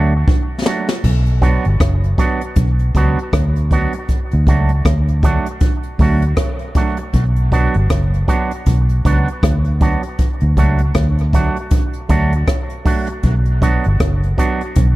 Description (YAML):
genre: dub reggae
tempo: 79 BPM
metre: 4/4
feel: swing 59% on 16ths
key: B minor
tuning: A4 = 444 Hz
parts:
  - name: electric guitar with an envelope filter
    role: accompaniment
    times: 0.0-14.6 s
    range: F#3 to F#4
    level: -22 LUFS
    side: right 4 dB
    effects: dub echo
  - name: vintage muted fingered electric bass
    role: bass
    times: 0.0-15.0 s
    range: F#1 to D2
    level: -15 LUFS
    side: equal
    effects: none
  - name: jazz brush drum kit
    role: drums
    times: 0.3-15.0 s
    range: crash cymbal, hi-hat, kick drum, rim click, snare drum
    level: -17 LUFS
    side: equal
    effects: none
room: small room ambience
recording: echo-heavy mix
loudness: -13 LUFS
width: side -18 dB against mid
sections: 0.0-1.0 A section; 1.0-15.0 B section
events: drum fill 0.0-1.0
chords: 0.0 D; 1.0 Bm; 4.1 D; 7.1 Bm; 10.2 D; 13.2 Bm